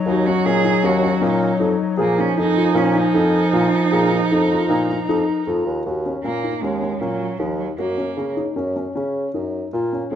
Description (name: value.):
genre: contemporary instrumental, chamber music in an uneven meter.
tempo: 155 BPM.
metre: 5/4.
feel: straight.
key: Eb minor.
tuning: A4 = 440 Hz.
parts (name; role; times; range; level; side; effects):
mellow clarinet; second line; 0.0-5.7 s; F3 to Gb3; -21 LUFS; left 2 dB; none.
warm woodwind section; sustained chords; 0.0-5.8 s; Eb4 to Bb5; -30 LUFS; right 3 dB; none.
rich cello; melody; 0.1-10.2 s; F3 to Ab4; -23 LUFS; right 6 dB; none.
dark concert grand piano; arpeggios; 0.1-10.2 s; Db4 to Ab4; -23 LUFS; left 3 dB; none.
dark bassoon; bass; 0.1-10.2 s; Eb2 to Db3; -23 LUFS; equal; none.
room: light reverb.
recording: dark, warm production.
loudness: -17 LUFS.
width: side -9 dB against mid.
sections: 0.0-5.9 A section; 5.9-10.2 B section.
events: none.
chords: 0.0 Ebm7; 2.0 Bb7sus4; 5.9 Ebm7; 7.8 Gb.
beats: | 0.05 0.44 0.83 1.21 1.60 | 1.99 2.37 2.76 3.15 3.53 | 3.92 4.30 4.69 5.08 5.47 | 5.85 6.24 6.63 7.02 7.40 | 7.79 8.18 8.57 8.96 9.34 | 9.73 10.12.